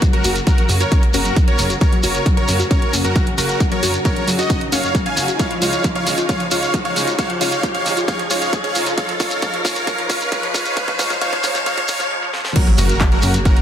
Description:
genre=uplifting trance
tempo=134 BPM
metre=4/4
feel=straight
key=F# major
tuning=A4 = 442 Hz
part: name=warm studio string section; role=sustained chords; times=0.0-13.6 s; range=C#3 to F#4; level=-26 LUFS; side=equal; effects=sidechain pumping
part: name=wide unison pluck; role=arpeggios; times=0.0-13.6 s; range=F#2 to F#4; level=-26 LUFS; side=left 2 dB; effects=sidechain pumping, digital delay
part: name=electronic kick drum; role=drums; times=0.0-13.5 s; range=none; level=-18 LUFS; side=equal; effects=overdrive
part: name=house drum kit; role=drums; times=0.0-13.6 s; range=crash cymbal, handclaps, hi-hat, snare drum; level=-26 LUFS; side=right 3 dB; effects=overdrive, sidechain pumping on hats, sidechain pumping on cymbals
part: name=shekere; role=percussion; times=0.0-13.5 s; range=none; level=-25 LUFS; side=equal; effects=none
part: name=riser and impact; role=sound effects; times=2.6-13.6 s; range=none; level=-26 LUFS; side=equal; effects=none
part: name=dense compressed supersaw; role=melody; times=0.1-13.6 s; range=F#4 to G#5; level=-21 LUFS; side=equal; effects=sidechain pumping, digital delay
part: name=plucky analog bass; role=bass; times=0.2-13.4 s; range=F#1 to F#2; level=-22 LUFS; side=equal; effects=sidechain pumping
room=light reverb, digital ambience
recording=dense, heavily limited modern master, high-pass filter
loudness=-15 LUFS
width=side -9 dB against mid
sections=0.0-12.6 A section; 12.6-13.6 B section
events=build-up 0.0-12.6; filter sweep on synth pluck 0.0-12.6; filter sweep 0.0-12.6; riser 2.6-12.1; drum fill 5.4-12.1, 12.3; break 12.1-12.6; drop 12.6-13.6; impact 12.6-13.6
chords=0.0 F#; 5.4 C#add9; 12.6 F#

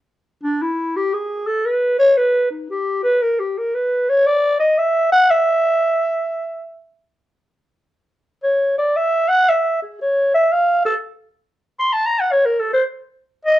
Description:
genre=jazz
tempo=115 BPM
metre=4/4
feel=swing 66% on 8ths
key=unclear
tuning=A4 = 440 Hz
part: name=growling clarinet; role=solo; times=0.4-13.6 s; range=D4 to C6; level=-15 LUFS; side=equal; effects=none
room=light reverb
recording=dark, warm production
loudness=-16 LUFS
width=side -14 dB against mid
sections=0.1-13.6 A section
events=clarinet solo 0.1-13.6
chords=none

